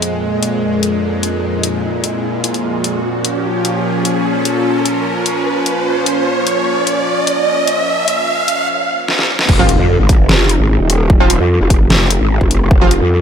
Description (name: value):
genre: heavy wobble dubstep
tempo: 149 BPM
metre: 4/4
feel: half-time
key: F minor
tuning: A4 = 445 Hz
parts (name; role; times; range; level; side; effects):
- supersaw pad; sustained chords; 0.0-9.4 s; F2 to Db4; -17 LUFS; equal; phaser, sidechain pumping
- dubstep drum kit; drums; 0.0-13.0 s; crash cymbal, hi-hat, snare drum; -16 LUFS; left 1 dB; none
- riser and impact; sound effects; 0.0-11.1 s; none; -19 LUFS; right 2 dB; none
- growl bass; bass; 9.5-13.2 s; Eb1 to F2; -12 LUFS; equal; chorus, overdrive
- electronic kick drum; drums; 9.5-12.8 s; none; -12 LUFS; equal; overdrive
- orchestra-hit-like synth stab; stabs; 9.6-12.9 s; F3 to F4; -18 LUFS; right 1 dB; built-in reverb, vintage 12-bit sampler grit, ping-pong delay
room: light reverb, digital ambience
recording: high-pass filter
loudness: -12 LUFS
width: side -8 dB against mid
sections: 0.0-9.5 A section; 9.5-13.2 B section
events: build-up 0.0-9.5; riser 0.0-8.7; filter sweep 0.0-9.5; drum fill 9.1-9.5; drop 9.5-13.2; impact 9.5-11.1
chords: 0.0 Fm; 3.0 Bbm; 9.5 Fm